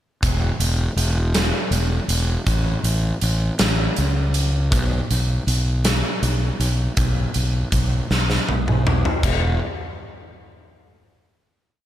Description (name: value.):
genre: quiet-loud alternative rock.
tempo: 53 BPM (dotted quarters).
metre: 6/8.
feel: straight.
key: unclear.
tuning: A4 = 440 Hz.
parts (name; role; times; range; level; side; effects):
fuzz fingered electric bass; bass; 0.2-9.6 s; E1 to C#2; -20 LUFS; equal; overdrive.
big rock drum kit; drums; 0.2-9.4 s; china cymbal, hi-hat, kick drum, snare drum, toms; -22 LUFS; equal; none.
room: little or no reverb.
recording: none.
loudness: -18 LUFS.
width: side -12 dB against mid.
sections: 0.2-9.2 verse; 9.2-11.5 final note.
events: drum fill 8.1-9.2.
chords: none.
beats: | 0.22 1.35 | 2.47 3.60 | 4.72 5.85 | 6.98 8.11 | 9.23.